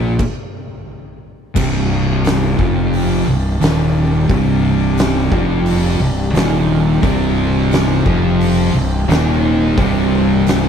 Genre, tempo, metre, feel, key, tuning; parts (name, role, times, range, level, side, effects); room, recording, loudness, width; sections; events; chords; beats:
stoner and doom metal; 88 BPM; 4/4; straight; C minor; A4 = 441 Hz
metallic inharmonic drone; sustained chords; 0.5-10.7 s; C3 to Eb4; -27 LUFS; left 2 dB; chorus, built-in reverb
thick fuzz guitar; riff; 0.0-10.7 s; C2 to Bb3; -19 LUFS; left 11 dB; distortion
thick fuzz guitar; riff; 0.0-10.7 s; C2 to Bb3; -18 LUFS; right 9 dB; distortion
fuzz fingered electric bass; bass; 0.0-10.7 s; C1 to Bb1; -18 LUFS; equal; overdrive
oversized low-tuned drum kit; drums; 0.2-10.6 s; crash cymbal, hi-hat, kick drum, snare drum; -20 LUFS; equal
tight distorted guitar; riff; 7.0-10.7 s; C2 to F3; -22 LUFS; equal; distortion
little or no reverb; -13 LUFS; side -7 dB against mid
0.0-1.6 A section; 1.6-10.7 B section
stop 0.2-1.6
0.0 N.C.; 1.6 Cm
0.19 0.87 | 1.56 2.24 2.92 3.61 | 4.29 4.98 5.66 6.34 | 7.03 7.71 8.40 9.08 | 9.77 10.46